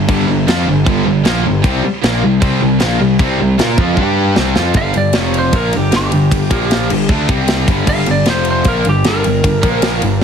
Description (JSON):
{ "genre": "hard rock", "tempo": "154 BPM", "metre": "4/4", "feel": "straight", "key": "G minor from 4.8 s", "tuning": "A4 = 440 Hz", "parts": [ { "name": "cranked stack guitar", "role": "riff", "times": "0.0-10.2 s", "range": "F2 to Bb4", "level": "-18 LUFS", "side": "left 10 dB", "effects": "overdrive" }, { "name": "high-gain distorted guitar", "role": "riff", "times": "0.0-10.2 s", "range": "F2 to Bb4", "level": "-19 LUFS", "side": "right 12 dB", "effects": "distortion" }, { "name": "sludgy distorted guitar", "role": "riff", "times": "0.0-4.8 s", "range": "G2 to Bb4", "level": "-19 LUFS", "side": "right 1 dB", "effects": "overdrive" }, { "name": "fuzz picked electric bass", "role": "bass", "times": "0.0-10.2 s", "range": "F1 to Bb2", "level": "-17 LUFS", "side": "equal", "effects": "overdrive" }, { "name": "tight metal drum kit", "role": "drums", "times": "0.1-10.2 s", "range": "crash cymbal, kick drum, ride cymbal, snare drum", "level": "-17 LUFS", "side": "equal", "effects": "none" }, { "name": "lightly driven lead guitar", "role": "melody", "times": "4.8-10.2 s", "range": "G4 to F5", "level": "-19 LUFS", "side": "right 1 dB", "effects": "none" } ], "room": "light reverb", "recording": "heavily compressed radio sound, multiband compression", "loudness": "-11 LUFS", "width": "side -7 dB against mid", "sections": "0.0-4.8 A section; 4.8-10.2 B section", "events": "drum fill 4.0-4.8; lead electric guitar solo 4.8-10.2", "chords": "0.0 Gm; 1.6 C5; 4.0 G5; 4.4 C5; 4.8 G5; 5.1 F5; 5.5 Gm; 6.5 Bb5; 6.9 G5; 7.3 C5; 7.7 G5; 8.3 F5; 8.7 Gm; 9.6 Bb5" }